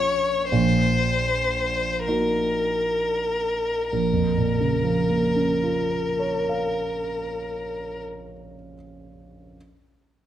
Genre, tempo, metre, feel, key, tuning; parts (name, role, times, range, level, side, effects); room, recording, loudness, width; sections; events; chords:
classical, romantic duo for violin and grand piano; 30-43 BPM (dotted quarters); 6/8; rubato; Bb minor; A4 = 440 Hz
clear violin; melody; 0.0-8.0 s; Bb4 to Db5; -24 LUFS; left 2 dB
dark concert grand piano; accompaniment; 0.0-9.6 s; Bb1 to F5; -25 LUFS; right 2 dB
moderate recital hall reverb, RT60 1.3 s; -21 LUFS; side -11 dB against mid
0.0-3.9 A section; 3.9-7.3 B section
slowing down 0.0-3.9
0.0 Bbm; 0.5 Ebm/Bb; 3.9 Bbm